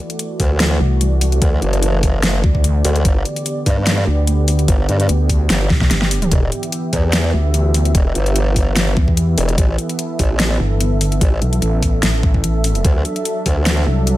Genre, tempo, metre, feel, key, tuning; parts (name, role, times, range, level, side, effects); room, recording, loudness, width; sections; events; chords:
heavy wobble dubstep; 147 BPM; 4/4; swing 54% on 16ths, half-time; A4 = 442 Hz
supersaw pad; sustained chords; 0.0-14.2 s; D3 to E5; -23 LUFS; right 1 dB; sidechain pumping, low-pass filter
dubstep drum kit; drums; 0.1-14.2 s; hi-hat, snare drum, toms; -20 LUFS; left 1 dB; overdrive, studio reverb
formant-sweep wobble bass; bass; 0.4-13.9 s; E1 to G2; -17 LUFS; equal; chorus, overdrive
electronic kick drum; drums; 0.4-13.5 s; -16 LUFS; equal; overdrive, studio reverb
pulsing pluck wobble bass; bass; 0.8-14.2 s; G1 to E2; -16 LUFS; equal; chorus, overdrive
little or no reverb; -14 LUFS; side -16 dB against mid
0.0-14.2 A section
drum fill 5.7-6.3
0.0 Dadd9; 3.0 G; 6.3 Em; 9.6 Asus2; 12.8 Dadd9